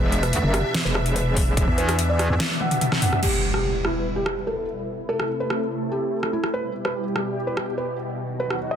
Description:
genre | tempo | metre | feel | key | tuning
heavy wobble dubstep | 145 BPM | 4/4 | half-time | E harmonic minor from 3.2 s | A4 = 445 Hz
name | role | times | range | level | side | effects
felt-muted upright piano | melody | 0.0-8.8 s | E4 to F#5 | -28 LUFS | equal | ping-pong delay
supersaw pad | sustained chords | 0.0-8.8 s | D#2 to E5 | -28 LUFS | equal | phaser, sidechain pumping, low-pass filter
metallic wobble bass | bass | 0.0-2.3 s | E1 to E2 | -22 LUFS | equal | chorus, overdrive
dubstep drum kit | drums | 0.1-8.6 s | crash cymbal, hi-hat, rim click, snare drum, toms | -25 LUFS | equal | overdrive
metallic wobble bass | bass | 0.4-2.4 s | E1 to E2 | -22 LUFS | equal | chorus, overdrive
electronic kick drum | drums | 1.4-1.7 s | none | -22 LUFS | equal | overdrive
impact | sound effects | 3.2-4.9 s | none | -27 LUFS | equal | none
room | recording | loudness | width
moderate plate reverb, RT60 1.3 s, digital ambience | dense, heavily limited modern master | -21 LUFS | side -8 dB against mid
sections
0.0-3.2 A section; 3.2-8.8 B section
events
drop 0.0-3.2; drum fill 2.4-3.2; impact 3.2-4.9; filter sweep on supersaw synth 3.2-8.8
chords
0.0 E5; 3.2 Em; 4.9 Am; 6.5 Em; 8.2 B/D#

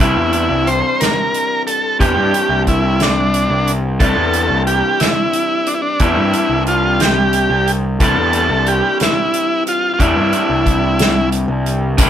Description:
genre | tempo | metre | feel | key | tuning
psychedelic rock | 60 BPM (dotted quarters) | 6/8 | straight | C major | A4 = 440 Hz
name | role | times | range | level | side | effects
overdriven combo organ | melody | 0.0-11.3 s | D4 to C5 | -16 LUFS | right 1 dB | none
electric guitar through a small old amp | riff | 0.0-12.1 s | C3 to E4 | -20 LUFS | left 3 dB | none
fuzz picked electric bass | bass | 0.0-12.1 s | C2 to G2 | -18 LUFS | equal | overdrive
soft-mallet drum kit | drums | 0.3-12.1 s | hi-hat, kick drum, snare drum | -18 LUFS | equal | none
tambourine | percussion | 12.0-12.1 s | none | -22 LUFS | left 7 dB | none
room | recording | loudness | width
moderate studio ambience, RT60 0.5 s | band playing live in one room | -13 LUFS | side -10 dB against mid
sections
0.0-12.0 A section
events
none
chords
0.0 Cadd9

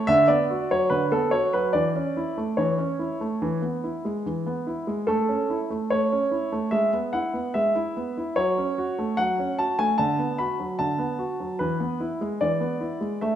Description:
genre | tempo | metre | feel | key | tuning
classical-period piano sonatina | 73 BPM | 4/4 | straight | unclear | A4 = 439 Hz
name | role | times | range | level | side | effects
clear baby grand piano | solo | 0.0-13.4 s | D3 to B5 | -22 LUFS | equal | none
room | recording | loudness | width
wet recital hall reverb, RT60 1.5 s | minimal, uncompressed stereo recording | -22 LUFS | side -10 dB against mid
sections
0.0-13.4 A section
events
none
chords
0.1 Bm/D; 1.7 A/E; 3.4 E; 5.1 A; 6.7 E/G#; 8.4 F#m; 10.0 Bm7/D; 11.6 E

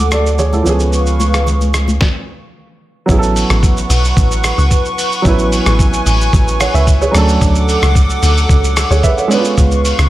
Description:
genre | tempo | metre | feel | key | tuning
amapiano | 111 BPM | 4/4 | straight | A major | A4 = 440 Hz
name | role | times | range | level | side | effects
dark baby grand piano | accompaniment | 0.0-10.1 s | E#3 to F#5 | -17 LUFS | right 3 dB | none
hollow soft pad | sustained chords | 0.0-10.1 s | A4 to D6 | -19 LUFS | equal | chorus, sidechain pumping
saturated sub bass | bass | 0.0-2.0 s | C#2 to D2 | -14 LUFS | equal | none
lo-fi sampler-style drum kit | drums | 0.1-10.1 s | hi-hat, kick drum, rim click, shaker, snare drum | -15 LUFS | equal | none
congas | percussion | 0.4-2.0 s | none | -23 LUFS | left 2 dB | none
deep log drum bass | bass | 3.1-10.1 s | A1 to D2 | -13 LUFS | equal | none
room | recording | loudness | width
little or no reverb | none | -10 LUFS | side -15 dB against mid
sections
0.0-3.1 A section; 3.1-10.1 B section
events
filter sweep 0.0-3.1; stop 2.0-3.1; drop 3.1-10.1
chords
0.0 Dmaj7; 0.7 C#7; 3.1 A69; 7.1 Dmaj7; 9.3 C#7

